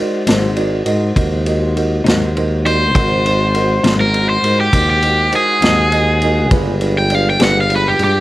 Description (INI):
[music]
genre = slow blues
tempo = 67 BPM (dotted quarters)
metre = 12/8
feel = straight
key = unclear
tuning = A4 = 440 Hz
[part]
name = dark grand piano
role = accompaniment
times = 0.0-8.2 s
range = D4 to Eb5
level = -21 LUFS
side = right 3 dB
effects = none
[part]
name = mellow tonewheel organ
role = sustained chords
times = 0.0-8.2 s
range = Ab3 to Gb5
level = -25 LUFS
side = left 1 dB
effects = slow rotary speaker
[part]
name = clean electric guitar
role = accompaniment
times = 0.3-7.6 s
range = Ab2 to Ab4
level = -19 LUFS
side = left 3 dB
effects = tremolo
[part]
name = breathy tuba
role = bass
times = 0.3-8.2 s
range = G1 to Ab2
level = -17 LUFS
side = equal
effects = none
[part]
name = vintage drum kit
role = drums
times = 0.3-8.1 s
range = kick drum, ride cymbal, snare drum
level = -20 LUFS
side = equal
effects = none
[part]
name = cranked stack guitar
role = melody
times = 2.7-8.2 s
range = G4 to G5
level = -15 LUFS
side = equal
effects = overdrive, plate reverb
[sound]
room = light reverb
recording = none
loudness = -12 LUFS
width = side -16 dB against mid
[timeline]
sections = 0.0-8.2 A section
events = overdriven electric guitar solo 0.0-8.2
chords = 0.0 Ab7; 6.5 G7b9